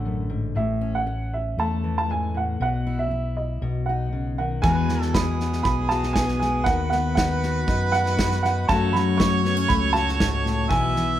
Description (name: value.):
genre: acoustic folk duo or small band.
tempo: 118 BPM.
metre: 4/4.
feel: straight.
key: E major.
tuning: A4 = 440 Hz.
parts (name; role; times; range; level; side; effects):
dark upright piano; melody; 0.0-11.2 s; D#5 to C#6; -26 LUFS; right 3 dB; none.
fingerpicked steel-string acoustic guitar; accompaniment; 0.0-11.2 s; E2 to F#4; -26 LUFS; left 4 dB; none.
fingered electric bass; bass; 0.0-11.2 s; A1 to F#2; -26 LUFS; equal; none.
mellow harmonica; second line; 4.6-11.2 s; G#4 to E5; -28 LUFS; right 4 dB; none.
natural country drum kit; drums; 4.6-11.0 s; kick drum, snare drum; -26 LUFS; equal; none.
room: light reverb.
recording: none.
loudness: -20 LUFS.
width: side -12 dB against mid.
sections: 0.0-4.6 A section; 4.6-11.2 B section.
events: none.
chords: 0.0 Dmaj7; 0.6 A; 2.6 Bsus4; 3.6 B; 4.6 Eadd9; 6.7 B/D#; 8.7 F#m.